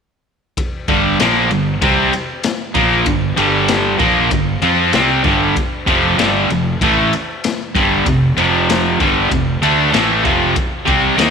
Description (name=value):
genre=blues rock power trio and southern rock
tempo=96 BPM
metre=4/4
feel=straight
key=unclear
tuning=A4 = 441 Hz
part: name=raw garage drum kit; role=drums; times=0.6-11.3 s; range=kick drum, ride cymbal, snare drum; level=-20 LUFS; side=left 2 dB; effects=none
part: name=distorted electric guitar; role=riff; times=0.9-11.3 s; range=F2 to F4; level=-13 LUFS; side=equal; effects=distortion
part: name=fuzz fingered electric bass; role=bass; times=0.9-11.3 s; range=F1 to F2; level=-22 LUFS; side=right 1 dB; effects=overdrive
room=moderate echo chamber reverb, RT60 2.3 s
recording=1960s-style stereo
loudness=-12 LUFS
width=side -6 dB against mid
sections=0.6-11.3 A section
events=none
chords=0.6 G5; 5.9 F5